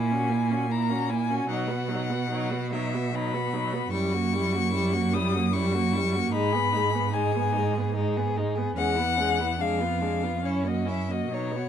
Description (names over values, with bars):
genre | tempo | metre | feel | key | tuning
classical, slow romantic movement for string quartet | 67-77 BPM | 3/4 | rubato | unclear | A4 = 440 Hz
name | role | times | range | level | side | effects
clear violin | melody | 0.0-11.7 s | C#5 to D#6 | -29 LUFS | left 6 dB | none
rich violin | second line | 0.0-11.7 s | C#4 to G#4 | -33 LUFS | left 4 dB | none
rich viola | accompaniment | 0.0-11.7 s | F#3 to C#4 | -30 LUFS | right 2 dB | none
rich cello | bass | 0.0-11.7 s | E2 to B2 | -28 LUFS | right 3 dB | none
room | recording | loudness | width
moderate studio reverb, RT60 0.6 s | dark, warm production | -24 LUFS | side -9 dB against mid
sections
0.0-11.7 A section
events
none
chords
0.0 F#7/A#; 1.5 B; 3.9 F#7b9; 6.3 G#m; 8.8 C#m7/E; 9.6 Fdim7; 10.4 F#7